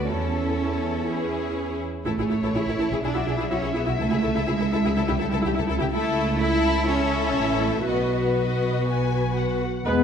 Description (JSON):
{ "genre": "quick classical-period movement for symphony orchestra", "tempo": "123 BPM", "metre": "4/4", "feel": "straight", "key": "A major", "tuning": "A4 = 440 Hz", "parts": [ { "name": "warm studio violin section", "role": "melody", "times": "0.0-9.9 s", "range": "A4 to G#5", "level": "-33 LUFS", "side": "left 6 dB", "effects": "none" }, { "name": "rich symphonic violin section", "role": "second line", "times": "0.0-9.6 s", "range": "F#4 to B4", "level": "-29 LUFS", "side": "left 5 dB", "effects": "none" }, { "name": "warm studio viola section", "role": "accompaniment", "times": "0.0-10.0 s", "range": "B3 to B4", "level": "-28 LUFS", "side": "equal", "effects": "none" }, { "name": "rich symphonic cello section", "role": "bass", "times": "0.0-9.6 s", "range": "G3 to E4", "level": "-27 LUFS", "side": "right 2 dB", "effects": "none" }, { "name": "warm chamber double bass section", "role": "bass", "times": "0.0-10.0 s", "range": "A1 to E2", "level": "-27 LUFS", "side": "right 2 dB", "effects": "none" }, { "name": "clear clarinet", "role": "second line", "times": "9.9-10.0 s", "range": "B3", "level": "-25 LUFS", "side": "left 8 dB", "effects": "none" }, { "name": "clear oboe", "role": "second line", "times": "9.9-10.0 s", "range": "B4", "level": "-26 LUFS", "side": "right 1 dB", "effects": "none" }, { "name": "warm bassoon", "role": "accompaniment", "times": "9.9-10.0 s", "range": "G#3", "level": "-28 LUFS", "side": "right 1 dB", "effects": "none" }, { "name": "mellow French horn section", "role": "sustained chords", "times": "9.9-10.0 s", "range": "G#3 to B3", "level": "-25 LUFS", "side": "left 8 dB", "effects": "none" } ], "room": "wet scoring stage reverb, RT60 1.5 s", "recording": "dark, warm production", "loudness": "-21 LUFS", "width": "side -7 dB against mid", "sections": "0.0-9.9 A section", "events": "none", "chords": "0.1 A/E; 2.1 A; 3.0 E7/B; 4.0 A/C#; 5.0 A7/C# (rootless); 5.9 A/C#; 7.9 B" }